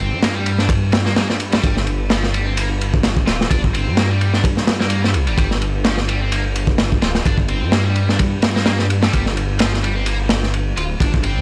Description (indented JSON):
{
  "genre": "breakbeat, breaks",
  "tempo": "128 BPM",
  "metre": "4/4",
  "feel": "swing 56% on 16ths",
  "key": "G minor",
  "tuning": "A4 = 440 Hz",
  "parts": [
    { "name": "tight distorted guitar", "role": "riff", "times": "0.0-11.4 s", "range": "F3 to F4", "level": "-29 LUFS", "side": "equal", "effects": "distortion, tube saturation, vintage 12-bit sampler grit, analog delay" },
    { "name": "detuned saw bass", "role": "bass", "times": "0.0-11.4 s", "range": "D1 to G2", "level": "-22 LUFS", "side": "equal", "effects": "none" },
    { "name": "crunchy breakbeat drum kit", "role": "drums", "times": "0.2-11.4 s", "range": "kick drum, ride cymbal, snare drum", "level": "-20 LUFS", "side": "equal", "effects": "none" }
  ],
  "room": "little or no reverb",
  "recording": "dry, gritty hardware recording, cassette tape",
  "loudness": "-18 LUFS",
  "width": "mono",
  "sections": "0.0-11.4 A section",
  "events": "none",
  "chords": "0.0 G5"
}